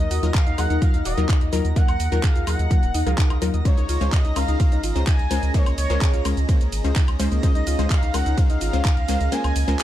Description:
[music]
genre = progressive house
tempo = 127 BPM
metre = 4/4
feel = straight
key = unclear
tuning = A4 = 440 Hz
[part]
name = expressive portamento lead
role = melody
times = 0.0-9.8 s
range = Db5 to Ab5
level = -30 LUFS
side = equal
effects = lush chorus, sidechain pumping, ping-pong delay
[part]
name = soft supersaw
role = second line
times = 0.0-9.8 s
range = Db5 to Ab5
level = -36 LUFS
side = left 1 dB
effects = sidechain pumping, ping-pong delay
[part]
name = warm analog pad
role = sustained chords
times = 0.0-9.8 s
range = Db4 to Gb5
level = -34 LUFS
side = right 1 dB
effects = chorus, sidechain pumping
[part]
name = soft round pluck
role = arpeggios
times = 0.0-9.8 s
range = Bb3 to Eb6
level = -31 LUFS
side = left 1 dB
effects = wide subtle chorus, vintage 12-bit sampler grit, sidechain pumping, ping-pong delay
[part]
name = wide unison pluck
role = stabs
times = 0.0-9.8 s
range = Gb3 to C5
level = -28 LUFS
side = left 5 dB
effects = sidechain pumping, ping-pong delay
[part]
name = saturated sub bass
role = bass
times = 0.0-9.8 s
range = Eb1 to Eb2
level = -23 LUFS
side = equal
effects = sidechain pumping
[part]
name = pop drum kit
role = drums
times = 0.0-9.8 s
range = handclaps, hi-hat, ride cymbal, shaker, woodblock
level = -31 LUFS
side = right 1 dB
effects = overdrive
[part]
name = twinkling granular texture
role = texture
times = 0.0-9.8 s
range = Bb5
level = -38 LUFS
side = right 5 dB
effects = built-in reverb, sidechain pumping
[part]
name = electronic kick drum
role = drums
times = 0.3-8.9 s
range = none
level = -19 LUFS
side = equal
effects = none
[sound]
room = little or no reverb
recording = dark, warm production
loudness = -18 LUFS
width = side -13 dB against mid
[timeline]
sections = 0.0-9.8 A section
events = kick drops out 9.3-9.8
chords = 0.0 Ebmadd9; 3.7 Dbmaj7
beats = 0.35 0.82 1.29 | 1.76 2.23 2.71 3.18 | 3.65 4.12 4.60 5.07 | 5.54 6.01 6.49 6.96 | 7.43 7.91 8.38 8.85 | 9.32 9.79

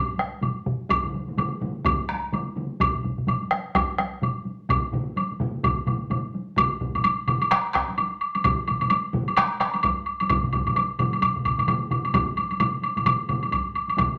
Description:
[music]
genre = japanese traditional, taiko drum ensemble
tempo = 128 BPM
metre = 4/4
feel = swing 60% on 16ths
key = none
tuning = none
[part]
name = taiko ensemble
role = percussion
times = 0.1-14.1 s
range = none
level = -34 LUFS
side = equal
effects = none
[part]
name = solo taiko drums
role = percussion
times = 0.2-14.1 s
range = none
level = -30 LUFS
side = equal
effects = none
[part]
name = woodblock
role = percussion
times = 0.4-14.1 s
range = none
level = -26 LUFS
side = equal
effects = none
[part]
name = taiko ensemble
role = percussion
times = 0.9-14.1 s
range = none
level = -34 LUFS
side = equal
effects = none
[part]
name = taiko ensemble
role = percussion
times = 0.9-14.1 s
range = none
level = -33 LUFS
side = equal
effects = none
[sound]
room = wet studio reverb, RT60 0.7 s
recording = none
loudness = -25 LUFS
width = mono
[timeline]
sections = 0.0-6.6 A section; 6.6-14.2 B section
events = speeding up 0.0-14.2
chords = none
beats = 0.42 | 0.90 1.38 1.85 2.33 | 2.81 3.28 3.75 4.22 | 4.70 5.17 5.64 6.11 | 6.58 7.04 7.51 7.98 | 8.44 8.91 9.37 9.84 | 10.30 10.76 11.22 11.68 | 12.14 12.60 13.06 13.52 | 13.98

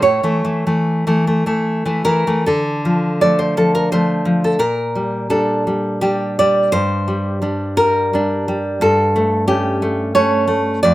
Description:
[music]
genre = romantic piece for solo classical guitar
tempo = 73-91 BPM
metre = 3/4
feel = rubato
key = D minor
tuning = A4 = 440 Hz
[part]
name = nylon-string guitar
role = solo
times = 0.0-10.9 s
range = F2 to D5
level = -14 LUFS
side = equal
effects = none
[sound]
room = little or no reverb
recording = recorded outdoors, with no room sound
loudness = -14 LUFS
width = side -16 dB against mid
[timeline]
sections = 0.0-2.4 A section; 2.4-10.9 B section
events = none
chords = 0.1 A; 2.4 Dm; 4.6 Gm/Bb; 6.7 Gm; 8.8 A7/G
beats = | 0.05 0.86 1.65 | 2.45 3.21 3.92 | 4.60 5.31 6.03 | 6.74 7.44 8.15 | 8.83 9.49 10.15 | 10.83

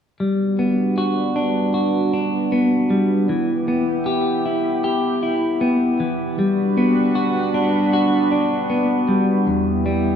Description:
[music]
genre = rock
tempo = 78 BPM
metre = 4/4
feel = straight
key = G major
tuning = A4 = 440 Hz
[part]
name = chorused pulse-width pad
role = sustained chords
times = 0.2-10.2 s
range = G3 to B4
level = -21 LUFS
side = right 2 dB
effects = none
[part]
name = clean electric guitar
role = arpeggios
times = 0.2-10.2 s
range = E2 to G4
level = -19 LUFS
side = left 2 dB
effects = none
[sound]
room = wet large studio reverb, RT60 1.4 s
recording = band playing live in one room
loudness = -17 LUFS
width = side -8 dB against mid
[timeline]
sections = 0.2-10.2 A section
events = none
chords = 0.2 Gmaj7; 3.3 Em; 6.4 Gmaj7; 9.5 Em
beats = | 0.20 0.97 1.75 2.52 | 3.29 4.07 4.84 5.61 | 6.39 7.16 7.93 8.70 | 9.47

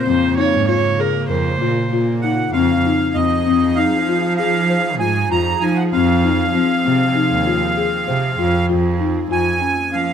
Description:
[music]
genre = contemporary instrumental, chamber music in an uneven meter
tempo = 195 BPM (eighths)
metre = 11/8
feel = straight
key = F minor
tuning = A4 = 440 Hz
[part]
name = accordion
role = melody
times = 0.0-10.1 s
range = C5 to Bb5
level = -20 LUFS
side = right 3 dB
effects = light tremolo tuning
[part]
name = rich viola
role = second line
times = 0.0-2.0 s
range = Bb4 to Db5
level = -21 LUFS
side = right 5 dB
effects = none
[part]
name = evolving wavetable pad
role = sustained chords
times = 0.0-10.1 s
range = Db3 to Ab4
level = -26 LUFS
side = right 1 dB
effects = ensemble chorus, built-in reverb
[part]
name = buzzing marimba with soft mallets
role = arpeggios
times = 0.0-10.1 s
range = C4 to C5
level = -19 LUFS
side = left 7 dB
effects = none
[part]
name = dark cello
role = bass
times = 0.1-10.1 s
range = Eb2 to F3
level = -21 LUFS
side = right 4 dB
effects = none
[sound]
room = moderate recital hall reverb, RT60 1.6 s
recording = close, detailed microphones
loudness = -15 LUFS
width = side -8 dB against mid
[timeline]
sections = 0.0-9.3 A section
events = none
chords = 0.0 Bbmadd9; 2.5 Fm7; 5.9 Fm; 9.3 Bbm7/F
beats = 0.07 0.38 0.69 1.00 1.30 1.61 1.92 2.23 | 2.54 2.85 3.15 3.46 3.77 4.08 4.39 4.70 5.00 5.31 5.62 | 5.93 6.24 6.54 6.85 7.16 7.47 7.78 8.09 8.39 8.70 9.01 | 9.32 9.63 9.94

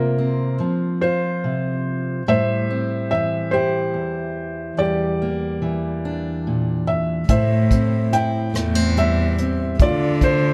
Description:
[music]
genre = acoustic folk-pop ballad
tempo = 48 BPM (dotted quarters)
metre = 6/8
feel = straight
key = unclear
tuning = A4 = 440 Hz
[part]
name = felt-muted upright piano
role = melody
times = 0.0-10.5 s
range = F4 to G5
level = -25 LUFS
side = equal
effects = none
[part]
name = fingerpicked steel-string acoustic guitar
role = accompaniment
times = 0.0-10.5 s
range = D2 to F4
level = -25 LUFS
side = equal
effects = none
[part]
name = warm cello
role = bass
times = 7.3-10.5 s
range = E2 to D3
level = -22 LUFS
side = equal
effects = none
[part]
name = soft brush drum kit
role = drums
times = 7.3-10.4 s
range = hi-hat, kick drum, rim click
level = -22 LUFS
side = equal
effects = none
[sound]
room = light reverb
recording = dark, warm production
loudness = -21 LUFS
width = mono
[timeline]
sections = 0.0-7.3 A section; 7.3-10.5 B section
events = none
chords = 0.0 C7sus4; 2.3 Am7; 4.8 Em7b5; 7.3 Am7; 9.8 Dm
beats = 1.01 | 2.26 3.52 | 4.77 6.03 | 7.29 8.54 | 9.80

